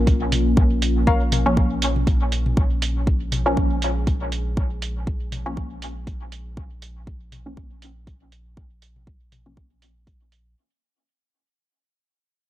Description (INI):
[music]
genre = dub techno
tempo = 120 BPM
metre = 4/4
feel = swing 56% on 16ths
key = Bb minor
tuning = A4 = 444 Hz
[part]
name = dark analog pad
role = sustained chords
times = 0.0-10.5 s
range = Bb3 to Bb4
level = -28 LUFS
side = left 1 dB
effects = chorus, vintage 12-bit sampler grit, sidechain pumping
[part]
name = soft dub sub bass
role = bass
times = 0.0-10.5 s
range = Bb1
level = -25 LUFS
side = equal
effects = sidechain pumping
[part]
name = electronic hi-hat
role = drums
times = 0.1-10.4 s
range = none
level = -28 LUFS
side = right 5 dB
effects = overdrive
[part]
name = electronic kick drum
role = drums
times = 0.1-10.2 s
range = none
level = -21 LUFS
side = equal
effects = none
[part]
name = electronic toms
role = percussion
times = 0.3-9.5 s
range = none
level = -30 LUFS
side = left 2 dB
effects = sidechain pumping on toms
[part]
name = filtered dub chord stab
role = riff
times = 1.1-1.2 s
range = Bb4 to F5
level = -27 LUFS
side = left 6 dB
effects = chorus, sidechain pumping, dub echo
[part]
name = filtered dub chord stab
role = stabs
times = 1.5-9.8 s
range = F3 to Db4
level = -26 LUFS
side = equal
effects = chorus, phaser, sidechain pumping, dub echo
[sound]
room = light reverb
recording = none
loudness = -19 LUFS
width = side -14 dB against mid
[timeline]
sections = 0.0-10.6 A section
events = fade-out 0.0-10.6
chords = 0.0 Bbm